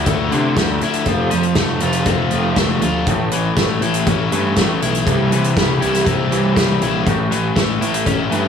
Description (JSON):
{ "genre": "indie rock", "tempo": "120 BPM", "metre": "4/4", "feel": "straight", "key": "unclear", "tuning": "A4 = 441 Hz", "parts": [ { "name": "biting overdriven guitar", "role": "riff", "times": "0.0-8.5 s", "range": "A2 to F4", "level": "-20 LUFS", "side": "left 9 dB", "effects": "none" }, { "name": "raw garage guitar", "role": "riff", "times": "0.0-8.5 s", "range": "A2 to D4", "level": "-20 LUFS", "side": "right 5 dB", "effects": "overdrive, analog chorus, analog delay" }, { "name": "fuzz picked electric bass", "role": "bass", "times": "0.0-8.5 s", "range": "F1 to D3", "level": "-22 LUFS", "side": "left 1 dB", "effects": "overdrive" }, { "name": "loose indie drum kit", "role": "drums", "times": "0.1-8.4 s", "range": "hi-hat, kick drum, snare drum", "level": "-20 LUFS", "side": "equal", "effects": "none" } ], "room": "moderate small room reverb, RT60 0.5 s", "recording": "small room ambience", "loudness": "-14 LUFS", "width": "side -7 dB against mid", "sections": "0.0-8.5 A section", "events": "none", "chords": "0.0 Dmadd9; 1.1 F; 3.1 A; 5.1 C; 7.1 A" }